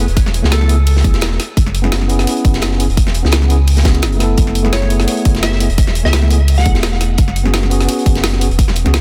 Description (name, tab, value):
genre	liquid drum and bass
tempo	171 BPM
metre	4/4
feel	swing 53% on 16ths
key	F# minor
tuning	A4 = 439 Hz
part	tine electric piano	accompaniment	0.0-9.0 s	A3 to A4	-22 LUFS	equal	tape echo
part	sub bass with octave	bass	0.0-9.0 s	E1 to C#2	-16 LUFS	equal	none
part	crunchy breakbeat drum kit	drums	0.1-9.0 s	hi-hat, snare drum	-26 LUFS	equal	high-pass filter on hats, high-pass filter on snare, high-pass filter on room
part	drum and bass drum kit	drums	0.2-9.0 s	hi-hat, snare drum	-24 LUFS	equal	none
part	electronic kick drum	drums	0.2-8.7 s	none	-15 LUFS	equal	none
part	glassy wavetable pluck	melody	0.5-0.7, 4.7-6.9 s	A4 to F#5	-29 LUFS	equal	chorus, digital delay
room	digital ambience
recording	dense, heavily limited modern master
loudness	-14 LUFS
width	mono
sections	0.0-9.0 A section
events	none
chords	0.0 F#m11